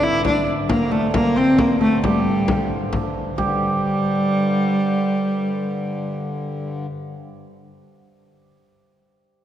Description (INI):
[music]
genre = medieval dance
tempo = 90 BPM (dotted quarters)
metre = 6/8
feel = straight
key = G dorian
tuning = A4 = 440 Hz
[part]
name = warm viola da gamba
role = melody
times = 0.0-6.8 s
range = G3 to E4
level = -19 LUFS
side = equal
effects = none
[part]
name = hammered dulcimer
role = second line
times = 0.0-7.4 s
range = G4 to E5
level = -27 LUFS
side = right 3 dB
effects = none
[part]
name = hand-pumped harmonium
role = drone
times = 0.0-6.9 s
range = G2 to D3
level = -28 LUFS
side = left 2 dB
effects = none
[part]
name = frame drum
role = percussion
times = 0.0-3.6 s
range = none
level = -25 LUFS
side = left 1 dB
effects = none
[sound]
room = wet church reverb, RT60 2.8 s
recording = dark, warm production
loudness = -18 LUFS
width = side -11 dB against mid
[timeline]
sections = 0.0-3.4 A section; 3.4-6.1 B section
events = none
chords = none